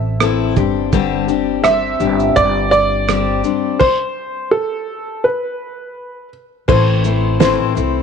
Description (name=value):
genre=acoustic pop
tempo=83 BPM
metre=4/4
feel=straight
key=C major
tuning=A4 = 439 Hz
part: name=warm upright piano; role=melody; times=0.0-8.0 s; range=A4 to E5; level=-17 LUFS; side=right 1 dB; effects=none
part: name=fingerpicked steel-string acoustic guitar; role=accompaniment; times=0.0-8.0 s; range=G2 to A4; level=-18 LUFS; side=left 12 dB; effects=none
part: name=upright bass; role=bass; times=0.0-8.0 s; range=G1 to C2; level=-20 LUFS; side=right 2 dB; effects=none
part: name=cloth-damped thuddy drum kit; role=drums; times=0.2-7.9 s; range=crash cymbal, kick drum, rim click, shaker, snare drum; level=-19 LUFS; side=right 6 dB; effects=none
room=light reverb, small room ambience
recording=1960s-style stereo with parts hard left and right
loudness=-13 LUFS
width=side -6 dB against mid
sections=0.0-6.7 A section; 6.7-8.0 B section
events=stop 3.8-6.7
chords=0.0 Am; 0.6 Csus2/G; 3.8 N.C.; 6.7 Am